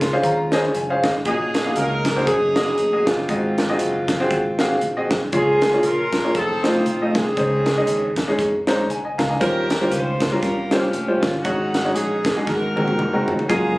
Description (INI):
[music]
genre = uptempo gospel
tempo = 118 BPM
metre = 4/4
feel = swing 57% on 8ths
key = unclear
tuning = A4 = 440 Hz
[part]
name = clear saxophone section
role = melody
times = 0.0-13.8 s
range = Ab3 to C5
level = -22 LUFS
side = equal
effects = none
[part]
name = clear upright piano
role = accompaniment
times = 0.0-13.7 s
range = Ab2 to C6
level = -21 LUFS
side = equal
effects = none
[part]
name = fingered electric bass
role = bass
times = 0.0-13.8 s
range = F1 to F2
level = -30 LUFS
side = equal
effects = none
[part]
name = crisp fusion drum kit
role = drums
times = 0.0-13.6 s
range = hi-hat, kick drum, snare drum, toms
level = -24 LUFS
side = equal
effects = none
[part]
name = percussive tonewheel organ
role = sustained chords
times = 13.5-13.8 s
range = Gb3 to Ab4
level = -22 LUFS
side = equal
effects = fast rotary speaker, chorus vibrato
[sound]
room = light reverb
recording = recorded on a phone in the room, club reverb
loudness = -18 LUFS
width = side -21 dB against mid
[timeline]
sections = 0.0-13.8 A section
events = upright piano fill 0.0-1.3, 8.4-9.4; drum fill 12.5-13.5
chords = 0.0 Bbm11; 1.3 Gb69/Bb; 3.3 Ab7; 5.3 Db6; 6.4 F7; 7.4 Bbm11; 9.4 Eb13; 11.5 Ab7sus4; 12.5 Ab9